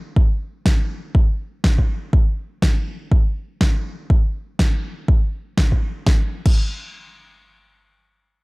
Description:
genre	house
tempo	122 BPM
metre	4/4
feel	swing 59% on 16ths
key	none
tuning	none
part	electronic kick drum	drums	0.2-6.6 s	none	-16 LUFS	equal	none
part	deep house drum kit	drums	0.7-6.6 s	crash cymbal, snare drum	-25 LUFS	equal	none
room	little or no reverb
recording	dry, gritty hardware recording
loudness	-17 LUFS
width	side -28 dB against mid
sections	0.0-6.1 A section; 6.1-8.4 B section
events	none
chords	none

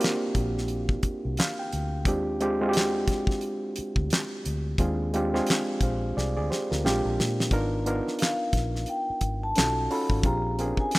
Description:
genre	R&B, neo-soul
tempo	88 BPM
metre	4/4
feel	swing 59% on 16ths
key	unclear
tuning	A4 = 440 Hz
part	overdriven reed electric piano	accompaniment	0.0-11.0 s	Ab3 to G5	-28 LUFS	right 1 dB	none
part	damped 70s drum kit	drums	0.0-11.0 s	handclaps, hi-hat, kick drum, snare drum	-27 LUFS	equal	none
part	vintage muted fingered electric bass	bass	0.4-10.7 s	Ab1 to Bb2	-30 LUFS	equal	none
part	vibraphone with soft mallets	melody	8.2-11.0 s	F5 to B5	-30 LUFS	left 1 dB	none
room	light reverb, studio ambience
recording	rough home demo mix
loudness	-24 LUFS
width	side -20 dB against mid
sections	0.0-7.5 A section; 7.5-11.0 B section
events	reed electric piano fill 1.0-2.1; drum fill 6.1-7.5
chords	0.0 Ebmaj9 (rootless); 2.1 Bb9; 7.5 Abm6; 9.6 B9; 10.2 Bb9

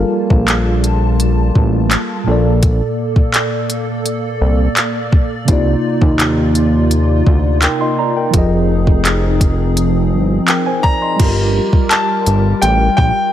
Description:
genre	contemporary R&B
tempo	84 BPM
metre	4/4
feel	straight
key	unclear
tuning	A4 = 440 Hz
part	mellow tine electric piano	accompaniment	0.0-13.3 s	Bb2 to C6	-19 LUFS	right 1 dB	medium stereo tremolo
part	hollow soft pad	sustained chords	0.0-13.3 s	C3 to A5	-20 LUFS	equal	ensemble chorus
part	fat analog bass	bass	0.0-13.1 s	F1 to Eb2	-14 LUFS	equal	none
part	smooth R&B drum kit	drums	0.3-13.1 s	crash cymbal, handclaps, hi-hat, kick drum	-15 LUFS	equal	none
part	clear concert grand piano	melody	10.8-13.3 s	G5 to Bb5	-16 LUFS	left 1 dB	none
room	little or no reverb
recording	none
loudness	-12 LUFS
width	side -11 dB against mid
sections	0.0-11.2 A section; 11.2-13.3 B section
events	none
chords	0.0 Gm9; 2.3 Bbmaj7; 5.5 Cm11; 8.3 Fm7; 11.2 Gm9

